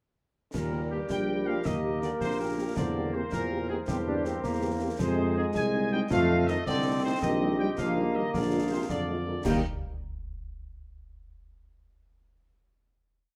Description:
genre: military-style march for wind band.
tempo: 108 BPM (dotted quarters).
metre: 6/8.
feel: straight.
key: Eb major.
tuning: A4 = 440 Hz.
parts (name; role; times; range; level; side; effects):
bright trumpet section; melody; 0.5-9.6 s; G4 to Ab5; -38 LUFS; equal; none.
warm euphonium; second line; 0.5-9.6 s; G2 to Ab3; -37 LUFS; equal; none.
warm woodwind section; second line; 0.5-9.6 s; G4 to F5; -39 LUFS; equal; none.
bright trombone section; sustained chords; 0.5-9.6 s; Eb3 to D4; -36 LUFS; equal; none.
warm tuba; bass; 0.5-9.6 s; Bb1 to F2; -33 LUFS; equal; none.
concert snare drum, clash cymbals and concert bass drum; drums; 0.5-9.7 s; none; -39 LUFS; equal; none.
mellow French horn section; accompaniment; 0.7-9.6 s; G3 to G4; -39 LUFS; equal; none.
room: wet large studio reverb, RT60 0.9 s.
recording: none.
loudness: -29 LUFS.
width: mono.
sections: 0.5-9.5 A section; 9.5-10.6 final chord.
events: none.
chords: 0.5 Eb; 2.8 C7/E; 5.0 Fm7; 6.1 F7; 7.2 Eb/Bb; 8.3 Bb7; 9.5 Eb.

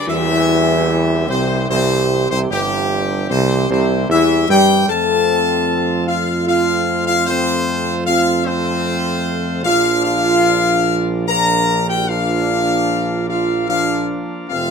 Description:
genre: classical, ceremonial fanfare.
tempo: 75 BPM.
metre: 3/4.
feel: straight.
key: C mixolydian.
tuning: A4 = 437 Hz.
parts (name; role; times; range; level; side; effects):
bright trumpet section; melody; 0.0-14.7 s; G4 to Bb5; -18 LUFS; left 3 dB; none.
chamber organ, principal chorus; sustained chords; 0.0-14.7 s; C3 to G4; -26 LUFS; equal; none.
mellow French horn section; sustained chords; 0.0-14.7 s; G3 to Bb4; -20 LUFS; left 1 dB; none.
warm trombone section; sustained chords; 0.1-14.7 s; G2 to D4; -23 LUFS; right 2 dB; none.
clear tuba; bass; 0.1-14.7 s; F1 to G2; -21 LUFS; right 3 dB; none.
tam-tam; percussion; 0.1-3.3 s; none; -29 LUFS; left 1 dB; none.
room: moderate studio ambience, RT60 0.4 s.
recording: minimal, uncompressed stereo recording.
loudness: -14 LUFS.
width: side -6 dB against mid.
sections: 0.1-14.7 A section.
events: band accent 0.1-0.9.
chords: 0.1 C; 4.9 F; 9.6 Bb.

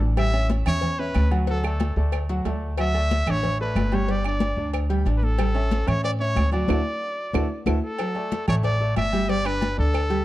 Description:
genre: latin, salsa.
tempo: 184 BPM.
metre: 4/4.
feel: straight.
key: D major.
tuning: A4 = 438 Hz.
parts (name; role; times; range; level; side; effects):
clear concert grand piano; accompaniment; 0.0-10.2 s; F#3 to G5; -29 LUFS; right 1 dB; none.
upright bass; bass; 0.0-10.2 s; G1 to A2; -23 LUFS; equal; none.
congas; percussion; 0.0-10.2 s; none; -29 LUFS; left 2 dB; none.
bright trumpet; melody; 0.2-10.2 s; A4 to E5; -27 LUFS; equal; none.
agogo bells and timbales; percussion; 0.2-10.1 s; none; -35 LUFS; right 6 dB; none.
claves; percussion; 0.2-10.1 s; none; -36 LUFS; right 8 dB; none.
cowbell; percussion; 0.2-10.2 s; none; -37 LUFS; left 13 dB; none.
room: little or no reverb.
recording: dark, warm production.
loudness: -21 LUFS.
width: side -15 dB against mid.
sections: 0.0-8.0 A section; 8.0-10.2 A section.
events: drum fill 6.7-8.0; band accent 6.7-8.0.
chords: 0.2 A7; 1.5 D; 4.1 Gsus2; 5.4 A7; 6.7 Dadd9; 9.3 Gsus2.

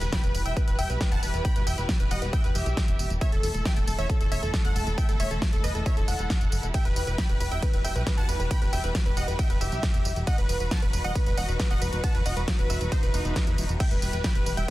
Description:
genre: uplifting trance.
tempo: 136 BPM.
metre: 4/4.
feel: straight.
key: E harmonic minor.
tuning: A4 = 435 Hz.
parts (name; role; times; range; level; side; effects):
supersaw stab; melody; 0.0-14.7 s; D#4 to B5; -33 LUFS; right 1 dB; sidechain pumping, dub echo.
plucky unison lead; second line; 0.0-14.7 s; A4 to B5; -37 LUFS; equal; wide subtle chorus, sidechain pumping, dub echo.
dark studio string section; sustained chords; 0.0-14.7 s; B2 to A4; -37 LUFS; left 1 dB; sidechain pumping.
plucky analog bass; bass; 0.0-14.7 s; E1 to E2; -30 LUFS; equal; sidechain pumping.
big-room dance drum kit; drums; 0.0-14.7 s; crash cymbal, hi-hat, ride cymbal, snare drum, tambourine; -34 LUFS; equal; none.
impact and swell; sound effects; 0.0-1.4, 13.1-13.8 s; none; -42 LUFS; equal; none.
electronic kick drum; drums; 0.1-14.7 s; none; -26 LUFS; equal; none.
room: digital ambience.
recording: dense, heavily limited modern master.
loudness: -23 LUFS.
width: side -16 dB against mid.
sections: 0.0-14.7 A section.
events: impact 0.0-1.4.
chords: 0.0 Em; 3.2 A/E; 6.7 Em; 10.3 B/E; 13.8 Em.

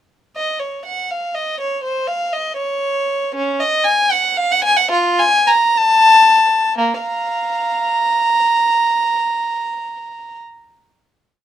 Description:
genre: classical, baroque-style suite movement for unaccompanied violin.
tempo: 57-82 BPM (dotted quarters).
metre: 6/8.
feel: rubato.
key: Bb minor.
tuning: A4 = 440 Hz.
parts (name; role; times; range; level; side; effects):
warm violin; solo; 0.4-10.4 s; Bb3 to Bb5; -14 LUFS; equal; none.
room: light reverb.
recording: minimal, uncompressed stereo recording.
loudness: -14 LUFS.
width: side -10 dB against mid.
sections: 0.4-6.8 A section; 6.8-10.6 final chord.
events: slowing down 2.6-6.8.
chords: none.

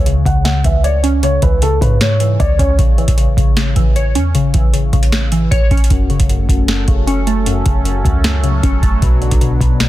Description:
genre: hip hop, trap.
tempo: 154 BPM.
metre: 4/4.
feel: half-time.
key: F# minor.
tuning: A4 = 440 Hz.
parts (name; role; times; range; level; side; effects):
dark grand piano; melody; 0.0-2.7 s; A4 to F#5; -20 LUFS; equal; low-pass filter, digital delay.
glassy wavetable pluck; accompaniment; 0.0-9.9 s; F#2 to C#5; -18 LUFS; left 2 dB; chorus, low-pass filter.
clean 808-style bass; bass; 0.0-9.9 s; F#1 to G#2; -15 LUFS; equal; none.
booming analog drum machine; drums; 0.1-9.9 s; hi-hat, kick drum, snare drum; -15 LUFS; equal; overdrive.
sweeping resonant pad; sustained chords; 6.3-9.9 s; F#3 to B4; -23 LUFS; right 2 dB; chorus, phaser.
room: digital ambience.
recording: dense, heavily limited modern master.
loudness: -11 LUFS.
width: side -15 dB against mid.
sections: 0.0-9.9 A section.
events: filter sweep 0.0-5.9.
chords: 0.0 C#m; 2.8 A; 5.9 F#m; 9.0 Bm.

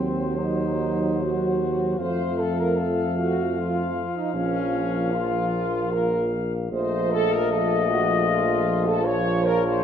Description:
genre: classical, hymn-like piece for brass band.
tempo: 76 BPM.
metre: 3/4.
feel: rubato.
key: Bb minor.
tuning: A4 = 440 Hz.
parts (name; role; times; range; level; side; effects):
warm flugelhorn; melody; 0.0-9.8 s; C5 to F5; -29 LUFS; left 9 dB; none.
mellow French horn section; second line; 0.0-9.8 s; C4 to Db5; -26 LUFS; right 3 dB; none.
warm euphonium; accompaniment; 0.0-9.8 s; Gb3 to Bb3; -30 LUFS; left 4 dB; none.
warm trombone; accompaniment; 0.0-9.8 s; F3 to Gb3; -30 LUFS; right 3 dB; none.
warm tuba; bass; 0.0-9.8 s; Bb1 to F2; -27 LUFS; equal; none.
room: moderate scoring stage reverb, RT60 1.7 s.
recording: none.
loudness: -21 LUFS.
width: side -8 dB against mid.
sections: 0.0-9.8 A section.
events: none.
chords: 0.0 Cdim/Eb; 2.0 F; 4.3 Bbm; 6.7 F7/Bb; 9.1 Bbm.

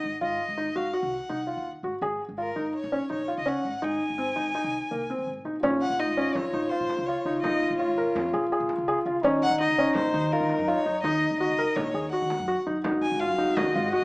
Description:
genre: contemporary instrumental, chamber music in an uneven meter.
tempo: 166 BPM.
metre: 5/4.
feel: straight.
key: Ab mixolydian.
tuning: A4 = 438 Hz.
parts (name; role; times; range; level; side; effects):
rich violin; melody; 0.0-14.0 s; Bb4 to Ab5; -30 LUFS; left 1 dB; none.
felt-muted upright piano; arpeggios; 0.0-14.0 s; Bb3 to Bb4; -27 LUFS; equal; none.
upright bass; bass; 0.0-13.9 s; Gb1 to Eb3; -38 LUFS; equal; none.
mellow French horn; second line; 5.6-14.0 s; Eb4 to Gb4; -28 LUFS; left 1 dB; none.
frame drum; percussion; 5.6-14.0 s; none; -36 LUFS; right 1 dB; none.
soft additive organ-like pad; sustained chords; 13.2-14.0 s; C3 to Gb4; -33 LUFS; right 1 dB; none.
room: moderate recital hall reverb, RT60 1.6 s.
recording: small speaker sound.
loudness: -24 LUFS.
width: side -26 dB against mid.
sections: 0.0-5.6 A section; 5.6-14.0 B section.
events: none.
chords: 0.0 Ab7; 2.0 Gbadd9/Ab (rootless); 3.8 Ab; 5.6 Bbm7; 9.2 Ebm7; 12.8 Ab7.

